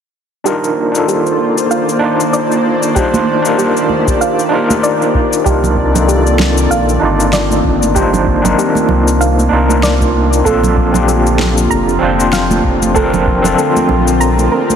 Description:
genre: sunset chillout.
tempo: 96 BPM.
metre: 4/4.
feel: swing 57% on 16ths.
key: unclear.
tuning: A4 = 441 Hz.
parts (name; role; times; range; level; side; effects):
overdriven tine electric piano; accompaniment; 0.4-14.8 s; C4 to D5; -14 LUFS; equal; fast tremolo, auto-pan, low-pass filter, tape echo.
airy breathy pad; sustained chords; 0.5-14.8 s; D3 to D5; -16 LUFS; equal; chorus.
soft round pluck; arpeggios; 0.5-14.7 s; G4 to Bb5; -20 LUFS; right 3 dB; chorus, vintage 12-bit sampler grit, tape echo.
electronic cabasa and snare drum; drums; 0.5-14.8 s; none; -21 LUFS; left 3 dB; overdrive, studio reverb.
electronic kick drum; drums; 3.0-13.4 s; none; -18 LUFS; equal; studio reverb.
congas; percussion; 3.1-14.8 s; none; -20 LUFS; right 4 dB; none.
warm sub bass; bass; 5.5-14.5 s; F1 to C2; -16 LUFS; equal; none.
room: moderate concert hall reverb, RT60 2.3 s.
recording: heavily compressed radio sound, multiband compression.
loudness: -10 LUFS.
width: side -8 dB against mid.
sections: 0.5-5.5 A section; 5.5-14.8 B section.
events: filter sweep on synth arpeggio sound 0.5-5.5; filter sweep on tine electric piano 5.5-14.8.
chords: 0.5 Cm11; 10.5 Bbmaj7.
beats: | 0.46 1.08 1.71 2.33 | 2.96 3.58 4.21 4.83 | 5.46 6.08 6.71 7.33 | 7.96 8.58 9.21 9.83 | 10.46 11.08 11.71 12.33 | 12.96 13.58 14.21.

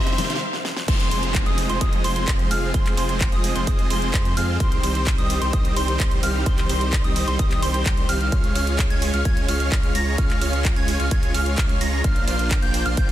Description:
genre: EDM, festival progressive house.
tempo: 129 BPM.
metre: 4/4.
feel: straight.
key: F minor.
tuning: A4 = 440 Hz.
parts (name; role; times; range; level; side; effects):
supersaw pad; sustained chords; 0.0-13.1 s; G3 to Db5; -32 LUFS; right 2 dB; sidechain pumping.
plucky unison lead; arpeggios; 0.0-13.1 s; C6 to Bb6; -28 LUFS; right 1 dB; cassette tape, sidechain pumping, dub echo.
supersaw chords; riff; 0.0-13.1 s; Eb3 to Bb5; -27 LUFS; equal; cassette tape, sidechain pumping, dub echo.
pop drum kit; drums; 0.0-13.1 s; crash cymbal, handclaps, hi-hat, snare drum; -29 LUFS; right 1 dB; high-pass filter on snare, studio reverb, high-pass filter on hats, high-pass filter on cymbals.
riser and downlifter; sound effects; 0.0-4.6 s; none; -31 LUFS; equal; none.
saturated sub bass; bass; 0.9-13.1 s; F1 to F2; -25 LUFS; equal; tube saturation, sidechain pumping.
electronic kick drum; drums; 0.9-13.1 s; none; -22 LUFS; equal; studio reverb.
room: little or no reverb.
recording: dense, heavily limited modern master.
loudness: -19 LUFS.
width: side -13 dB against mid.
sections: 0.9-13.1 A section.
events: drum fill 0.0-0.4, 0.5-0.9; riser 0.0-0.4; break 0.4-0.9; drop 0.9-13.1.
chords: 0.0 Cm; 0.9 Fm; 4.6 Cm; 8.3 Db; 12.0 Bbadd9.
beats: 0.42 | 0.88 1.35 1.81 2.28 | 2.74 3.21 3.67 4.14 | 4.60 5.07 5.53 6.00 | 6.46 6.93 7.39 7.86 | 8.32 8.79 9.25 9.72 | 10.18 10.65 11.11 11.58 | 12.04 12.51 12.97.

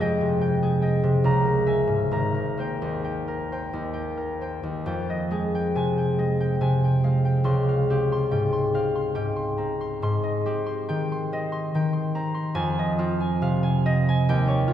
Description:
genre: classical, solo harp piece.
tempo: 64-76 BPM.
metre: 3/4.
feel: rubato.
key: Ab major, F minor from 4.9 s.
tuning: A4 = 442 Hz.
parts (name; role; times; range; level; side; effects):
concert harp; solo; 0.0-14.7 s; Ab1 to Eb6; -22 LUFS; equal; none.
room: wet concert hall reverb, RT60 2.1 s.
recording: heard from further back in the room.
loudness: -22 LUFS.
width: side -10 dB against mid.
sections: 0.0-4.9 A section; 4.9-14.7 B section.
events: none.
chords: 0.0 Fm9; 1.2 Dbm6; 2.1 Abmaj9; 4.9 Fm9; 7.5 Dbmaj7#11; 10.0 Abmaj7; 12.5 Fm7.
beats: 0.41 1.24 | 2.13 3.06 3.96 | 4.86 5.74 6.60 | 7.47 8.31 9.15 | 10.01 10.87 11.72 | 12.54 13.38 14.23.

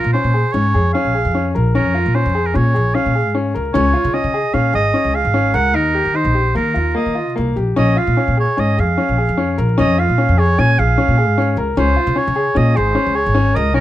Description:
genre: contemporary instrumental, chamber music in an uneven meter.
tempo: 150 BPM.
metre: 5/4.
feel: straight.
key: Bb minor.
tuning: A4 = 439 Hz.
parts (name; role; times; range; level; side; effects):
clear oboe; melody; 0.0-13.8 s; Bb4 to Ab5; -19 LUFS; right 3 dB; none.
clear grand piano; arpeggios; 0.0-13.8 s; Bb3 to Bb4; -19 LUFS; left 3 dB; none.
upright bass; bass; 0.0-13.8 s; Ab1 to Eb3; -17 LUFS; equal; none.
room: light reverb.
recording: vinyl crackle.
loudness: -13 LUFS.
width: side -13 dB against mid.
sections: 0.0-13.8 A section.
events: none.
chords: 0.0 Bbm7; 3.7 Dbsus2; 5.7 Ebadd9; 7.8 Bbm7; 11.8 Db5.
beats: 0.15 0.55 0.95 1.35 | 1.75 2.15 2.55 2.95 3.35 | 3.74 4.14 4.54 4.94 5.34 | 5.75 6.15 6.55 6.96 7.36 | 7.77 8.17 8.58 8.98 9.38 | 9.78 10.18 10.58 10.98 11.38 | 11.77 12.17 12.56 12.96 13.36 | 13.76.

